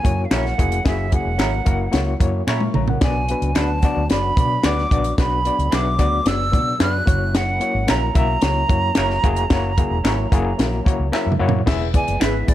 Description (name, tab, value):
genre	uptempo 1960s-style soul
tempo	111 BPM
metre	4/4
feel	straight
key	unclear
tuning	A4 = 440 Hz
part	breathy silver concert flute	melody	0.0-12.5 s	D5 to F#6	-24 LUFS	right 2 dB	none
part	overdriven reed electric piano	accompaniment	0.0-12.5 s	A#3 to C#6	-25 LUFS	left 5 dB	fast tremolo
part	percussive tonewheel organ	sustained chords	0.0-12.5 s	E3 to G#4	-32 LUFS	right 1 dB	slow rotary speaker, chorus vibrato
part	vintage muted fingered electric bass	bass	0.0-12.5 s	E1 to B2	-23 LUFS	equal	none
part	compact cocktail drum kit	drums	0.0-12.5 s	crash cymbal, hi-hat, kick drum, snare drum, toms	-20 LUFS	equal	none
part	electric guitar through a small old amp	stabs	0.3-12.3 s	C#4 to B4	-28 LUFS	right 3 dB	lush chorus
part	finger snap	percussion	0.3-12.3 s	none	-30 LUFS	left 3 dB	none
room	small room ambience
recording	none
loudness	-16 LUFS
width	side -13 dB against mid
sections	0.0-11.7 A section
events	drum fill 2.5-3.0, 11.1-11.7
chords	0.0 F#7; 3.0 Bm; 7.1 F#7; 11.7 E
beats	0.32 | 0.86 1.40 1.94 2.48 | 3.02 3.56 4.10 4.64 | 5.18 5.72 6.26 6.80 | 7.34 7.89 8.43 8.97 | 9.51 10.05 10.59 11.13 | 11.68 12.22